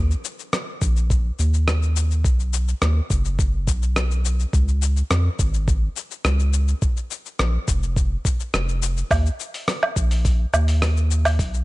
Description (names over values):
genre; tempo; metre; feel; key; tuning
sunset chillout; 105 BPM; 4/4; straight; Eb minor; A4 = 440 Hz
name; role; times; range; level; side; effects
round analog bass; bass; 0.0-11.6 s; F1 to F2; -20 LUFS; equal; none
dusty soul sampler-style drum kit; drums; 0.1-11.6 s; hi-hat, rim click, shaker, woodblock; -25 LUFS; equal; studio reverb
electronic kick drum; drums; 0.8-11.5 s; none; -22 LUFS; equal; studio reverb
room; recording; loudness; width
little or no reverb; nothing above 10.6 kHz; -19 LUFS; side -20 dB against mid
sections
0.0-11.6 A section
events
none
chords
none